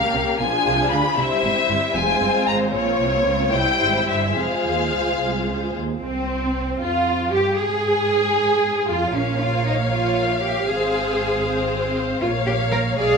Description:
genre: quick classical-period movement for string orchestra.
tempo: 77 BPM (dotted quarters).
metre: 6/8.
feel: rubato.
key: F minor.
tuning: A4 = 440 Hz.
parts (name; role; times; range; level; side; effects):
rich studio violin section; melody; 0.0-13.2 s; C4 to B5; -23 LUFS; left 4 dB; none.
dark studio violin section; second line; 0.0-13.2 s; C4 to D5; -25 LUFS; left 3 dB; none.
warm studio viola section; accompaniment; 0.0-13.2 s; F3 to Ab4; -26 LUFS; right 3 dB; none.
clear studio double bass section; bass; 0.1-13.2 s; F1 to Ab2; -28 LUFS; right 3 dB; none.
warm studio cello section; bass; 0.1-13.2 s; C2 to Bb4; -25 LUFS; right 3 dB; none.
room: wet recital hall reverb, RT60 1.8 s.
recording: none.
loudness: -18 LUFS.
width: side -5 dB against mid.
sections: 0.0-6.0 A section; 6.0-13.2 A section.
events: none.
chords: 0.4 Bdim7; 1.2 C; 1.9 Fm; 2.7 Bbmadd9; 3.5 C; 4.4 Fm; 6.0 F5/C; 7.6 Fm; 9.2 Bbm; 10.7 Fm/Ab; 12.2 Gm7b5/Bb (rootless).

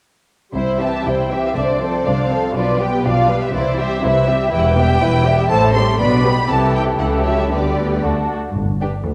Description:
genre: quick classical-period movement for symphony orchestra.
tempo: 120 BPM.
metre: 2/4.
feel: rubato.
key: C major, G major from 4.5 s.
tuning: A4 = 440 Hz.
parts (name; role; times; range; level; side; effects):
rich studio violin section; melody; 0.5-8.9 s; B4 to C6; -25 LUFS; equal; none.
warm studio viola section; accompaniment; 0.5-8.9 s; D3 to E4; -25 LUFS; equal; none.
clear studio double bass section; bass; 0.5-9.1 s; E1 to D2; -24 LUFS; equal; none.
warm studio violin section; second line; 0.6-8.9 s; E4 to E5; -22 LUFS; equal; none.
rich studio cello section; bass; 0.6-9.1 s; D2 to D3; -24 LUFS; equal; none.
timpani; percussion; 8.6-9.1 s; G2; -26 LUFS; equal; none.
room: wet recital hall reverb, RT60 1.4 s.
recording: recorded in a church or concert hall.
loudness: -17 LUFS.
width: mono.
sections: 0.5-8.6 A section.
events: none.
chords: 0.5 C; 1.6 Dm7/C; 2.6 G7/B; 3.5 C; 4.5 Em; 5.5 Am7; 6.0 G/B; 6.5 Am7/C; 7.0 A7/C#; 7.5 G/D; 8.0 D; 8.6 G5.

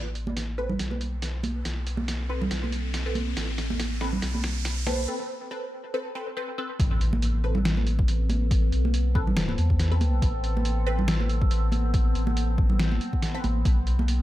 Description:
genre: deep dubstep.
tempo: 140 BPM.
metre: 4/4.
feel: swing 56% on 16ths, half-time.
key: A minor.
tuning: A4 = 440 Hz.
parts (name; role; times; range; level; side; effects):
overtone-sweeping drone; sustained chords; 1.2-14.2 s; D3 to A4; -36 LUFS; equal; chorus, built-in reverb, phaser.
soft dub sub bass; bass; 0.0-14.2 s; A1 to E2; -26 LUFS; equal; none.
riser and impact; sound effects; 0.0-8.5 s; none; -38 LUFS; equal; none.
trip hop sampler-style drum kit; drums; 0.2-14.2 s; hi-hat, snare drum; -32 LUFS; equal; high-pass filter on hats, small room ambience, high-pass filter on snare, high-pass filter on toms.
congas; percussion; 0.3-14.1 s; none; -33 LUFS; right 3 dB; dub echo.
filtered dub chord stab; stabs; 0.6-13.5 s; C4 to B4; -34 LUFS; equal; phaser, analog chorus, dub echo.
electronic kick drum; drums; 6.8-13.7 s; none; -25 LUFS; equal; small room ambience.
room: digital ambience.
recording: none.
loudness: -23 LUFS.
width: side -15 dB against mid.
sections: 0.0-6.8 A section; 6.8-14.2 B section.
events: build-up 0.0-6.8; drum fill 0.0-5.1; riser 0.0-5.1; filter sweep on synth drone 0.0-6.8; break 5.1-6.8; drop 6.8-14.2; impact 6.8-8.5.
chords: 0.0 Amadd9; 13.7 Bdim.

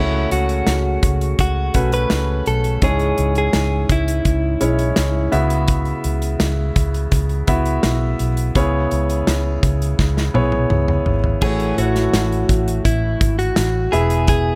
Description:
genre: piano-driven pop.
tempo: 84 BPM.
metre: 4/4.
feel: straight.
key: unclear.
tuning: A4 = 439 Hz.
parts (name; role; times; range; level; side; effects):
direct-recorded clean electric guitar; melody; 0.0-5.3, 11.4-14.6 s; E4 to B4; -25 LUFS; equal; none.
clear concert grand piano; accompaniment; 0.0-14.6 s; G#2 to E5; -24 LUFS; equal; none.
vintage muted fingered electric bass; bass; 0.0-14.5 s; E1 to C#2; -22 LUFS; equal; none.
natural country drum kit; drums; 0.3-14.4 s; crash cymbal, hi-hat, kick drum, snare drum, toms; -23 LUFS; equal; none.
room: little or no reverb.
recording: none.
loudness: -18 LUFS.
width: mono.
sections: 0.0-11.4 A section; 11.4-14.6 B section.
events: drum fill 10.0-11.4.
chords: 0.0 F#m/C#; 2.8 C#m; 5.3 Bsus4/C#; 8.6 E6/C#; 11.4 A6; 13.9 E.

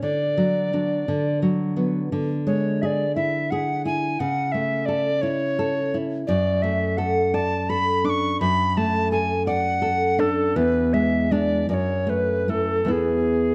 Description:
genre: romantic duo for recorder and classical guitar.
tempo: 47-60 BPM (dotted quarters).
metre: 6/8.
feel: rubato.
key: unclear.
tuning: A4 = 441 Hz.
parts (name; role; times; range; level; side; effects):
alto recorder; melody; 0.0-13.5 s; G#4 to D6; -26 LUFS; equal; slapback echo.
nylon-string guitar; accompaniment; 0.0-13.5 s; E2 to D5; -25 LUFS; equal; none.
room: moderate recital hall reverb, RT60 1.4 s.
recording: none.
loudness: -23 LUFS.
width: mono.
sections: 0.0-13.5 A section.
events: none.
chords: 0.0 D; 1.1 Bm/D; 2.1 E7/D; 4.2 A/C#; 6.3 D/F#; 10.6 E7; 11.7 F#m7; 12.9 E.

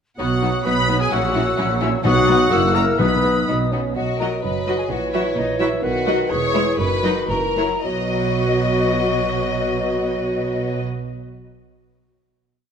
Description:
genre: quick classical-period movement for symphony orchestra.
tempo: 108-130 BPM.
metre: 2/4.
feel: straight.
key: B major.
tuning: A4 = 440 Hz.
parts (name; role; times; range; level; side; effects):
rich studio violin section; melody; 0.2-10.8 s; B4 to B5; -28 LUFS; left 2 dB; none.
mellow oboe; second line; 0.2-3.5 s; F#4 to B4; -28 LUFS; right 2 dB; none.
rich studio violin section; second line; 0.2-10.8 s; D#4 to D#5; -27 LUFS; left 4 dB; none.
silver concert flute; second line; 0.2-10.8 s; D#5 to E6; -27 LUFS; left 3 dB; none.
warm clarinet; second line; 0.2-10.8 s; F#4 to D#5; -26 LUFS; left 2 dB; none.
dark bassoon; accompaniment; 0.2-10.8 s; D#3 to D#4; -25 LUFS; right 2 dB; none.
rich studio viola section; accompaniment; 0.2-10.8 s; F#3 to F#4; -27 LUFS; right 1 dB; none.
bright studio double bass section; bass; 0.2-10.8 s; E1 to B1; -27 LUFS; right 4 dB; none.
warm studio cello section; bass; 0.2-10.8 s; E2 to B2; -27 LUFS; right 3 dB; none.
mellow French horn section; sustained chords; 0.4-10.8 s; F#3 to F#4; -28 LUFS; left 4 dB; none.
timpani; percussion; 2.0-3.7 s; B2; -25 LUFS; left 2 dB; none.
room: moderate scoring stage reverb, RT60 1.8 s.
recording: none.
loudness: -17 LUFS.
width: side -7 dB against mid.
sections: 0.2-4.0 A section; 4.0-7.8 A section; 7.8-10.0 final chord.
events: slowing down 5.4-7.8.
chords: 0.2 B; 1.1 F#7/A#; 2.0 B; 2.5 F#7; 3.0 B; 4.9 F#7/A#; 5.8 B; 6.3 C#m/E; 6.8 B/F#; 7.3 F#7; 7.8 B.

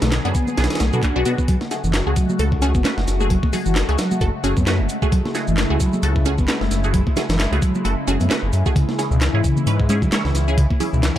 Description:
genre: breakbeat, breaks.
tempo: 132 BPM.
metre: 4/4.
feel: swing 56% on 16ths.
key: F# minor.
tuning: A4 = 440 Hz.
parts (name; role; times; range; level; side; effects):
phased analog pad; sustained chords; 0.0-11.2 s; C#3 to G#4; -26 LUFS; left 2 dB; phaser, chorus, sidechain pumping.
mellow reed electric piano; riff; 0.0-11.0 s; B2 to A4; -24 LUFS; equal; fast tremolo.
dark detuned saw bass; bass; 0.0-11.2 s; F#1 to B2; -20 LUFS; equal; none.
breakbeat sampler-style drum kit; drums; 0.0-11.2 s; hi-hat, kick drum, snare drum; -21 LUFS; equal; none.
electronic shaker and handclaps; drums; 0.0-11.1 s; none; -30 LUFS; right 1 dB; none.
filtered dub chord stab; stabs; 0.2-11.2 s; A3 to C#5; -26 LUFS; right 1 dB; phaser, dub echo.
congas; percussion; 0.5-10.9 s; none; -31 LUFS; right 3 dB; none.
swell; sound effects; 0.8-1.5 s; none; -33 LUFS; left 4 dB; none.
room: digital ambience.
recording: dark, warm production.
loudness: -17 LUFS.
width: side -12 dB against mid.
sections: 0.0-11.2 A section.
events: swell 0.8-1.5.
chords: 0.0 Bm; 1.5 F#madd9; 8.8 C#m.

